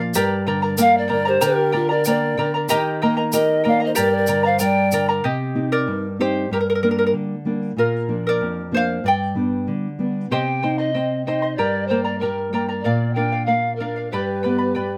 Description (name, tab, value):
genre	andean folk, Andean ensemble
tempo	94 BPM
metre	2/4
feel	straight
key	G minor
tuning	A4 = 440 Hz
part	charango	accompaniment	0.0-15.0 s	F4 to C6	-25 LUFS	equal	none
part	nylon-string guitar	accompaniment	0.0-15.0 s	F2 to G4	-25 LUFS	equal	none
part	tube shaker	percussion	0.1-5.1 s	none	-30 LUFS	equal	none
part	polished pan flute	melody	0.8-5.0, 10.3-15.0 s	Bb4 to G5	-24 LUFS	equal	none
part	breathy mellow large quena	second line	0.8-5.1, 14.1-15.0 s	F4 to D5	-26 LUFS	equal	none
room	moderate small room reverb, RT60 0.6 s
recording	close, detailed microphones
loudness	-20 LUFS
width	mono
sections	0.0-5.2 A section; 5.2-10.3 B section; 10.3-15.0 C section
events	charango solo 5.2-10.3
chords	0.2 Gm; 2.7 Eb; 4.0 Gm; 5.2 Cm; 6.5 Gm; 7.8 Bb; 9.0 G; 10.3 Cm; 11.6 Gm; 12.9 Bb; 14.1 G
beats	| 0.15 0.79 | 1.42 2.06 | 2.69 3.32 | 3.96 4.59 | 5.23 5.86 | 6.50 7.14 | 7.77 8.41 | 9.04 9.68 | 10.32 10.95 | 11.59 12.22 | 12.86 13.50 | 14.13 14.77